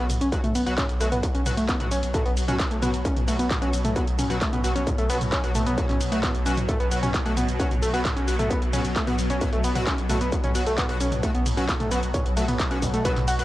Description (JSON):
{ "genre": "driving peak-time techno", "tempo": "132 BPM", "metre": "4/4", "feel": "straight", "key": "unclear", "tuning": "A4 = 440 Hz", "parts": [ { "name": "overdriven synth lead", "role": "riff", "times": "0.0-13.3 s", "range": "A3 to F#4", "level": "-27 LUFS", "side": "equal", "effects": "sidechain pumping, cassette tape, tape echo" }, { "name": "sync-sweep polysynth", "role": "stabs", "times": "0.0-13.4 s", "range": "B2 to F#4", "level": "-33 LUFS", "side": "equal", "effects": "chorus, sidechain pumping, cassette tape, tape echo" }, { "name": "saturated sub bass", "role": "bass", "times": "0.0-13.4 s", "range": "B1", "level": "-30 LUFS", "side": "equal", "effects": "overdrive, sidechain pumping, low-pass filter" }, { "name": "swarming drone", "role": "drone", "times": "1.2-13.4 s", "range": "B2 to F#3", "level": "-32 LUFS", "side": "left 1 dB", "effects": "built-in reverb, phaser, sidechain pumping, cassette tape" }, { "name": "techno drum kit", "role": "drums", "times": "0.1-13.4 s", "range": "handclaps, hi-hat, ride cymbal, shaker, toms", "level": "-30 LUFS", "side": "equal", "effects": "cassette tape" }, { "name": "electronic kick drum", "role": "drums", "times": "0.3-13.1 s", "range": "none", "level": "-26 LUFS", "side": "equal", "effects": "distortion, cassette tape" } ], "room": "moderate spring reverb, RT60 1.9 s, digital ambience", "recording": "home recording on cassette", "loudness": "-22 LUFS", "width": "side -16 dB against mid", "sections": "0.0-13.4 A section", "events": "none", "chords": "0.0 B5", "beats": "0.32 0.78 | 1.23 1.69 2.14 2.60 | 3.05 3.50 3.96 4.41 | 4.87 5.32 5.78 6.23 | 6.69 7.14 7.59 8.05 | 8.50 8.96 9.41 9.87 | 10.32 10.78 11.23 11.69 | 12.14 12.60 13.05" }